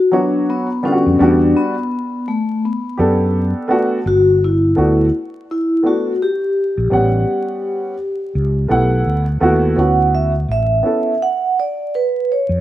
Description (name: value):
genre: hip hop, jazz-hop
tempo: 84 BPM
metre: 4/4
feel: swing 61% on 16ths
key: D major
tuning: A4 = 440 Hz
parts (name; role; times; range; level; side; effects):
- vibraphone with soft mallets; melody; 0.0-12.6 s; A3 to F#5; -17 LUFS; left 1 dB; none
- dark upright piano; accompaniment; 0.1-11.1 s; D3 to F#5; -17 LUFS; right 1 dB; none
- mellow fretless electric bass; bass; 1.1-12.6 s; G1 to F#2; -17 LUFS; equal; lush chorus
room: little or no reverb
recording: rough home demo mix, vinyl crackle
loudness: -14 LUFS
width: side -14 dB against mid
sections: 0.0-9.8 A section; 9.8-12.6 A section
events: none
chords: 0.0 Dmaj13; 1.2 Em9 (rootless); 4.1 Gmaj9; 6.9 A13; 9.1 D69; 9.8 Dmaj13